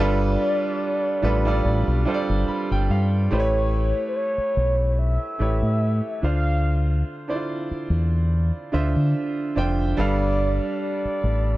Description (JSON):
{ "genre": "R&B, neo-soul", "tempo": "72 BPM", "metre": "4/4", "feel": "swing 55% on 16ths", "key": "D dorian", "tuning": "A4 = 436 Hz", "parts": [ { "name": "mellow horn-like synth lead", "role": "melody", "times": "0.0-11.6 s", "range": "C5 to F5", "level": "-26 LUFS", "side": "equal", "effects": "chorus, phaser" }, { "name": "clear upright piano", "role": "accompaniment", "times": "0.0-11.6 s", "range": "D3 to B5", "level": "-26 LUFS", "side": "right 3 dB", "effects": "none" }, { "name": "deep dub fingered electric bass", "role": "bass", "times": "0.0-11.6 s", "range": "F1 to D3", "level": "-21 LUFS", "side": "equal", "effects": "none" } ], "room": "little or no reverb", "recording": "dry, close 1970s-style studio recording", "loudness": "-20 LUFS", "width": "side -17 dB against mid", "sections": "0.0-3.3 A section; 3.3-11.6 B section", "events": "upright piano fill 2.1-3.3", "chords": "0.0 G9; 3.3 A9; 6.2 Dm9; 10.0 G9" }